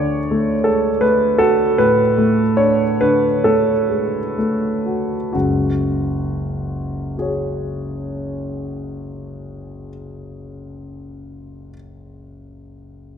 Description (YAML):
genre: classical, impressionist solo piano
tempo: 30-44 BPM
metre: 4/4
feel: rubato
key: F# minor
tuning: A4 = 440 Hz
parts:
  - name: warm grand piano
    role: solo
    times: 0.0-13.2 s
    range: F#1 to D5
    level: -17 LUFS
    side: equal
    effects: none
room: moderate recital hall reverb, RT60 1.6 s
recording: dark, warm production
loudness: -16 LUFS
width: side -8 dB against mid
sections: 0.0-5.3 A section; 5.3-12.6 B section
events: slowing down 0.0-5.3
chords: 0.0 D; 5.3 F#sus2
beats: 0.34 1.79 3.44 | 5.33 7.17 9.00 10.79